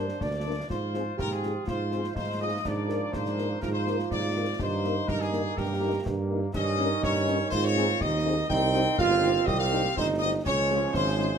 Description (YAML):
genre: military-style march for wind band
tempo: 123 BPM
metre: 2/4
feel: straight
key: Eb major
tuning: A4 = 440 Hz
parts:
  - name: warm trumpet section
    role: melody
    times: 0.0-11.4 s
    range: Ab4 to G5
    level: -31 LUFS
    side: left 3 dB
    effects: none
  - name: warm euphonium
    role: second line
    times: 0.0-11.4 s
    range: Db4 to G4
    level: -30 LUFS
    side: right 4 dB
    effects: none
  - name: dark French horn section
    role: accompaniment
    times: 0.0-11.3 s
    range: Ab3 to Bb4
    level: -34 LUFS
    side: left 6 dB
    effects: none
  - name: clear trombone section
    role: sustained chords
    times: 0.0-11.4 s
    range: Eb3 to F4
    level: -37 LUFS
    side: right 1 dB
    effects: none
  - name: mellow tuba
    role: bass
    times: 0.0-11.3 s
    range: G1 to Ab2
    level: -30 LUFS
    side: right 2 dB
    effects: none
  - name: concert snare drum, concert bass drum and clash cymbals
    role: drums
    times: 0.1-11.3 s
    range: none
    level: -37 LUFS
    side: left 1 dB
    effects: none
room: moderate large studio reverb, RT60 1.1 s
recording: close, detailed microphones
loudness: -24 LUFS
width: side -7 dB against mid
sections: 0.0-11.4 A section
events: none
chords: 0.0 Gm; 0.7 Fm/Ab; 2.6 Bb7/Ab; 4.6 Eb/G; 6.5 Eb7/G; 7.5 Ab; 8.5 Cm; 10.5 Db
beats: 0.20 | 0.69 1.18 | 1.67 2.16 | 2.65 3.13 | 3.62 4.11 | 4.60 5.08 | 5.57 6.06 | 6.55 7.04 | 7.53 8.01 | 8.50 8.99 | 9.48 9.97 | 10.46 10.94